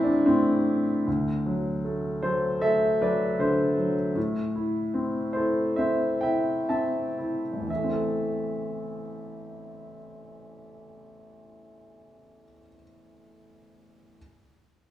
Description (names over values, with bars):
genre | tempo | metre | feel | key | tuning
classical, lyrical solo piano | 58-79 BPM | 4/4 | rubato | A dorian | A4 = 438 Hz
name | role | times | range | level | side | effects
warm grand piano | solo | 0.0-14.2 s | A1 to A5 | -24 LUFS | equal | none
room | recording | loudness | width
wet recital hall reverb, RT60 1.8 s | recorded in a church or concert hall, small room ambience | -24 LUFS | side -12 dB against mid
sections
0.0-1.1 A section; 1.1-7.7 B section; 7.7-11.7 C section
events
slowing down 1.1-7.7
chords
0.0 Am; 1.1 D; 4.2 Am